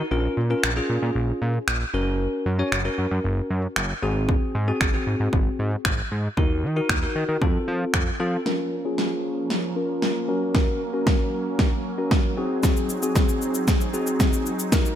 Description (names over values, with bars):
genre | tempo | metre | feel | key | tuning
dance-pop | 115 BPM | 4/4 | straight | unclear | A4 = 443 Hz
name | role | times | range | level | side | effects
bell-like tine electric piano | accompaniment | 0.0-15.0 s | C4 to Db5 | -26 LUFS | left 2 dB | sidechain pumping, low-pass filter, slapback echo
fat analog bass | bass | 0.0-8.4 s | Gb1 to F3 | -25 LUFS | equal | sidechain pumping
pop drum kit | drums | 0.6-15.0 s | finger snaps, hi-hat, kick drum, shaker, snare drum | -23 LUFS | equal | overdrive
soft supersaw | sustained chords | 8.5-15.0 s | F3 to Bb4 | -30 LUFS | right 3 dB | sidechain pumping, low-pass filter
room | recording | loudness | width
moderate lush hall reverb, RT60 1.7 s, digital ambience | big arena sound | -21 LUFS | side -10 dB against mid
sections
0.0-8.5 A section; 8.5-15.0 B section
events
build-up 8.5-15.0; drum fill 8.5-15.0; filter sweep 8.5-15.0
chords
0.1 Bbm; 1.9 Gb; 4.0 Ab7; 6.4 Ebm; 7.4 F; 8.5 Bbm; 10.3 Gb; 12.4 Ab7